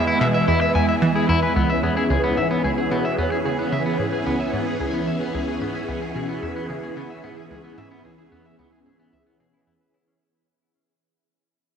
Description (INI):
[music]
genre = ambient, sequencer-driven space music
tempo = 111 BPM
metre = 4/4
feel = straight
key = C# minor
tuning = A4 = 439 Hz
[part]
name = phased string machine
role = sustained chords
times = 0.0-10.2 s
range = E3 to G#4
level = -23 LUFS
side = right 1 dB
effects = ensemble chorus, phaser
[part]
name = clean electric guitar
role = arpeggios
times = 0.0-10.1 s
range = B3 to G#5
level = -25 LUFS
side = left 2 dB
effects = auto-pan, tape echo
[part]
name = analog pluck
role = riff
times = 0.0-10.2 s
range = C#2 to E3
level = -25 LUFS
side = right 1 dB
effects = chorus, tape echo
[part]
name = wind-like tuned noise texture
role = texture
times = 0.0-10.2 s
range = E4 to E5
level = -34 LUFS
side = right 2 dB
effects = built-in reverb
[sound]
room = wet cathedral reverb, RT60 6.7 s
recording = dreamy mix soaked in reverb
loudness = -19 LUFS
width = side -7 dB against mid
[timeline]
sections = 0.0-1.6 A section; 1.6-10.2 B section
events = fade-out on synth arpeggio sound 1.6-10.2; fade-out on clean electric guitar 1.6-10.2; fade-out 1.6-10.2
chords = 0.0 E; 1.6 C#m7